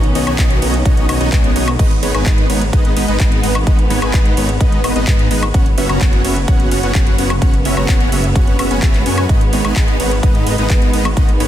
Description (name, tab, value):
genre	EDM, festival progressive house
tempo	128 BPM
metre	4/4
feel	straight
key	G# minor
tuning	A4 = 440 Hz
part	warm studio string section	sustained chords	0.0-11.5 s	C#3 to C#4	-23 LUFS	right 1 dB	sidechain pumping
part	dense compressed supersaw	riff	0.0-11.5 s	G#3 to A#5	-19 LUFS	equal	sidechain pumping, digital delay
part	wide detuned saw bass	bass	0.0-11.5 s	F#1 to G#2	-19 LUFS	equal	chorus, sidechain pumping
part	house drum kit	drums	0.0-11.5 s	crash cymbal, handclaps, hi-hat, ride cymbal, woodblock	-23 LUFS	left 1 dB	overdrive
part	electronic kick drum	drums	0.4-11.3 s	none	-13 LUFS	equal	none
part	swell	sound effects	1.1-1.8 s	none	-26 LUFS	equal	none
room	digital ambience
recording	dense, heavily limited modern master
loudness	-12 LUFS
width	side -12 dB against mid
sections	0.0-11.5 A section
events	swell 1.1-1.8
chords	0.0 Badd9; 1.8 G#m; 5.5 F#sus4; 9.3 G#m